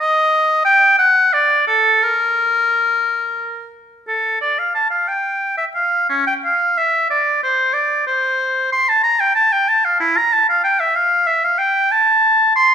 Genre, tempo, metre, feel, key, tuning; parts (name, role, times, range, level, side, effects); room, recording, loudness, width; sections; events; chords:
classical, baroque-style fantasia for unaccompanied oboe; 57-63 BPM (dotted quarters); 6/8; rubato; A4 = 440 Hz
clear oboe; solo; 0.0-12.7 s; C#4 to C6; -13 LUFS; equal
moderate recital hall reverb, RT60 1.6 s; minimal, uncompressed stereo recording; -13 LUFS; side -8 dB against mid
0.0-4.1 A section; 4.1-12.7 A section